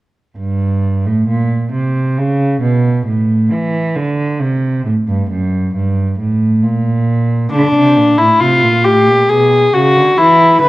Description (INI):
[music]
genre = classical, baroque-style fugue for string quartet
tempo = 67 BPM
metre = 4/4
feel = straight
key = unclear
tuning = A4 = 440 Hz
[part]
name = dark cello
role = bass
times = 0.4-10.7 s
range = F#2 to E3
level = -14 LUFS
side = right 2 dB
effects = none
[part]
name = warm viola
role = accompaniment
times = 7.5-10.7 s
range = D4 to B4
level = -8 LUFS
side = left 1 dB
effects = none
[sound]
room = moderate recital hall reverb, RT60 1.5 s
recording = worn, warbling old tape, cassette tape, warbly pitch drift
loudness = -11 LUFS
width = side -18 dB against mid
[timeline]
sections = 0.4-10.7 A section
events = none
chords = 0.4 Gm; 2.2 A; 4.0 D7; 5.8 Gm; 7.5 Dm; 9.3 E7/B